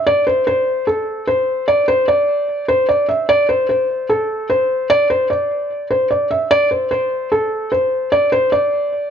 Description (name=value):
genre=hip hop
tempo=149 BPM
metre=4/4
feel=half-time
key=unclear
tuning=A4 = 436 Hz
part: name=felt-muted upright piano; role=solo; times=0.0-9.1 s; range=A4 to E5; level=-14 LUFS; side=equal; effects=low-pass filter
room=studio reverb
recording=dry, gritty hardware recording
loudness=-14 LUFS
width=side -8 dB against mid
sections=0.0-9.1 A section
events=none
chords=none